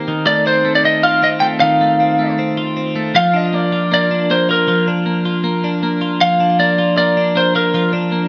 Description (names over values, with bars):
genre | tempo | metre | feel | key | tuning
indie pop | 157 BPM | 4/4 | straight | Bb major | A4 = 440 Hz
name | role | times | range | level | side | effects
twelve-string electric guitar | arpeggios | 0.0-8.3 s | Eb3 to G4 | -19 LUFS | equal | spring reverb
lightly driven lead guitar | melody | 0.3-7.9 s | Bb4 to G5 | -16 LUFS | equal | none
room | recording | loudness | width
moderate echo chamber reverb, RT60 1.8 s, digital ambience | none | -15 LUFS | mono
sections
0.0-3.2 A section; 3.2-8.3 B section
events
none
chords
0.1 F7; 3.2 Bb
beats
| 0.09 0.47 0.85 1.24 | 1.62 2.00 2.39 2.77 | 3.15 3.53 3.92 4.30 | 4.68 5.06 5.45 5.83 | 6.21 6.59 6.97 7.36 | 7.74 8.12